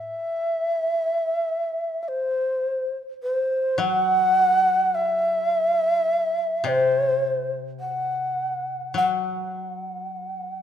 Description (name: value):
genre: japanese traditional, Japanese chamber music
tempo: 52 BPM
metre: 2/4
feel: rubato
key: unclear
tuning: A4 = 440 Hz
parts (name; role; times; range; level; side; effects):
- mellow long shakuhachi; melody; 0.0-10.6 s; C5 to F#5; -22 LUFS; equal; none
- koto; accompaniment; 0.0-0.1, 3.8-10.6 s; C3 to F#3; -31 LUFS; left 6 dB; none
room: moderate scoring stage reverb, RT60 1.5 s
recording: minimal, uncompressed stereo recording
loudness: -21 LUFS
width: side -9 dB against mid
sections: 0.0-10.6 A section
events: none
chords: none